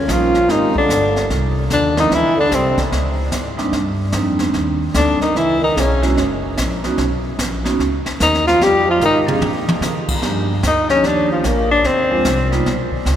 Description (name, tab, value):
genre	jazz, small-group swing and bop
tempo	148 BPM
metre	4/4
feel	swing 65% on 8ths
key	Eb major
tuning	A4 = 440 Hz
part	warm tenor saxophone	melody	0.0-12.5 s	F3 to G4	-18 LUFS	left 2 dB	none
part	trombone with bucket mute	second line	0.0-9.3 s	C3 to G3	-24 LUFS	right 2 dB	none
part	upright bass	bass	0.0-13.2 s	Gb1 to D3	-21 LUFS	equal	none
part	vibraphone with medium hard mallets	accompaniment	0.1-12.6 s	F3 to Ab4	-22 LUFS	right 2 dB	none
part	jazz brush drum kit	drums	0.1-13.2 s	brushed snare drum, crash cymbal, hi-hat, kick drum, snare drum, toms	-24 LUFS	equal	none
room	wet cathedral reverb, RT60 6.5 s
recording	recorded in a church or concert hall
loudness	-14 LUFS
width	side -10 dB against mid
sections	0.0-10.2 A section; 10.2-13.2 B section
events	drum fill 9.0-9.8; tenor saxophone solo 10.2-13.2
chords	0.5 Abmaj7; 2.1 Cadd9; 2.9 Dbsus2; 3.7 Cm9; 5.3 Dbm7; 6.2 Gb; 7.0 Bmaj9; 8.6 Fm; 9.4 Bb; 10.2 Ebmaj9; 11.8 Dm7b5; 12.7 Bsus2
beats	0.08 | 0.49 0.89 1.30 1.70 | 2.10 2.51 2.92 3.32 | 3.73 4.13 4.54 4.94 | 5.35 5.75 6.16 6.57 | 6.97 7.38 7.78 8.19 | 8.60 9.00 9.41 9.81 | 10.22 10.63 11.03 11.44 | 11.84 12.25 12.66 13.06